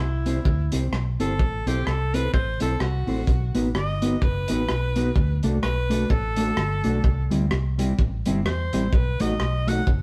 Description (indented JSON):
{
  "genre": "ska",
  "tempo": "127 BPM",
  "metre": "4/4",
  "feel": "swing 58% on 8ths",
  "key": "unclear",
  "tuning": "A4 = 440 Hz",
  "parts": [
    { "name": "bright alto saxophone", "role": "melody", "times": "0.0-9.9 s", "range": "E4 to F#5", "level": "-32 LUFS", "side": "equal", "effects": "none" },
    { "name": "vintage muted fingered electric bass", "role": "bass", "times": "0.0-10.0 s", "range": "F#1 to E2", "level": "-28 LUFS", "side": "equal", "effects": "none" },
    { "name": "mellow electric guitar", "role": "accompaniment", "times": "0.3-9.8 s", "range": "F#3 to C5", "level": "-29 LUFS", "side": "equal", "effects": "slapback echo" },
    { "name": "crunchy breakbeat drum kit", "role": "drums", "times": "0.3-10.0 s", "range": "hi-hat, kick drum, rim click", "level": "-28 LUFS", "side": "equal", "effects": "none" }
  ],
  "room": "moderate stone room reverb, RT60 1.2 s",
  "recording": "band playing live in one room, vinyl crackle",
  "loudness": "-23 LUFS",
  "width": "mono",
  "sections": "0.0-10.0 A section",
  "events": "alto saxophone solo 0.0-10.0",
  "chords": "0.0 C; 1.4 Am; 3.3 B; 5.2 D; 7.0 C; 8.9 B7",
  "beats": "0.45 0.92 | 1.39 1.86 2.33 2.81 | 3.28 3.75 4.22 4.69 | 5.16 5.63 6.10 6.57 | 7.04 7.51 7.99 8.46 | 8.93 9.40 9.87"
}